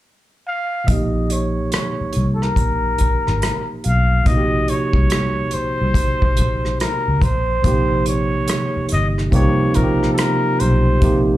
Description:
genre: R&B, neo-soul.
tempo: 71 BPM.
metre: 4/4.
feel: swing 63% on 16ths.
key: Bb dorian.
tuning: A4 = 440 Hz.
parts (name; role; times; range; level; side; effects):
trumpet with straight mute; melody; 0.5-11.2 s; A4 to F5; -22 LUFS; left 1 dB; low-pass filter, slapback echo, plate reverb.
barky tine electric piano; accompaniment; 0.8-11.4 s; Bb2 to G4; -21 LUFS; right 1 dB; overdrive, low-pass filter, slapback echo.
vintage muted fingered electric bass; bass; 0.9-11.4 s; G1 to Db2; -19 LUFS; equal; none.
unplugged drum kit; drums; 0.9-11.3 s; hi-hat, kick drum, rim click; -20 LUFS; equal; none.
room: light reverb.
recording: live gig heard through the venue's PA, club reverb.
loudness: -16 LUFS.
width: side -14 dB against mid.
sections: 0.9-7.6 A section; 7.6-11.4 B section.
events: filter sweep 0.9-7.6.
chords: 0.0 N.C.; 0.9 Bbm69; 7.2 Bbsus2; 7.6 Bbm69.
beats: 0.03 | 0.88 1.72 2.57 3.41 | 4.26 5.10 5.95 6.79 | 7.64 8.48 9.33 10.17 | 11.02.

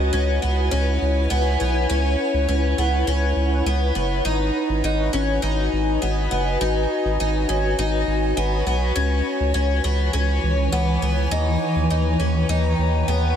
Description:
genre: dream pop.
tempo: 102 BPM.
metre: 4/4.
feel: straight.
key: G# minor.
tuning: A4 = 440 Hz.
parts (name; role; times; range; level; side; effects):
granular cloud pad; sustained chords; 0.0-13.4 s; E3 to G#5; -24 LUFS; equal; built-in reverb.
picked twelve-string acoustic guitar; arpeggios; 0.0-13.4 s; B3 to D#4; -24 LUFS; left 2 dB; wide subtle chorus, tape echo.
saturated sub bass; bass; 0.0-13.3 s; F#1 to D#2; -22 LUFS; equal; none.
room: light reverb, studio reverb.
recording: none.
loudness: -19 LUFS.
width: side -9 dB against mid.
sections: 0.0-13.4 A section.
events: none.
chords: 0.0 C#m7; 4.3 G#m7; 9.0 C#m7; 11.3 D#7b9b13.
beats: 0.13 0.72 1.31 | 1.90 2.49 3.07 3.66 | 4.25 4.84 5.43 6.02 | 6.60 7.19 7.78 8.37 | 8.96 9.54 10.13 10.72 | 11.31 11.90 12.49 13.07.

